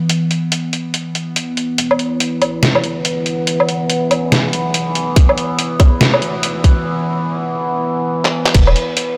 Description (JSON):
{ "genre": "deep dubstep", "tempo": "142 BPM", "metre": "4/4", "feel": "swing 60% on 16ths, half-time", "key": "E minor", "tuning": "A4 = 440 Hz", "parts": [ { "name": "overtone-sweeping drone", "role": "sustained chords", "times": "0.0-9.2 s", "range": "E3 to B3", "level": "-21 LUFS", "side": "equal", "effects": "chorus, built-in reverb" }, { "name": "trip hop sampler-style drum kit", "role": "drums", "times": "0.1-9.1 s", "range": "crash cymbal, handclaps, hi-hat, snare drum, woodblock", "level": "-19 LUFS", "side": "equal", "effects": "small room reverb" }, { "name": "soft dub sub bass", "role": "bass", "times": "1.8-8.7 s", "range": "E1 to E2", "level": "-27 LUFS", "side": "equal", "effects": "high-pass filter" }, { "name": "electronic kick drum", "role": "drums", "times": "5.2-8.6 s", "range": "none", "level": "-12 LUFS", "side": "equal", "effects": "small room reverb" } ], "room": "light reverb, digital ambience", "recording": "none", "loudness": "-16 LUFS", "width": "mono", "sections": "0.0-1.8 A section; 1.8-8.5 B section", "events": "build-up 1.8-8.5; break 6.9-8.5; drum fill 8.2-8.5", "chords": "0.0 E5; 1.8 Em; 5.2 Bm; 8.5 E5" }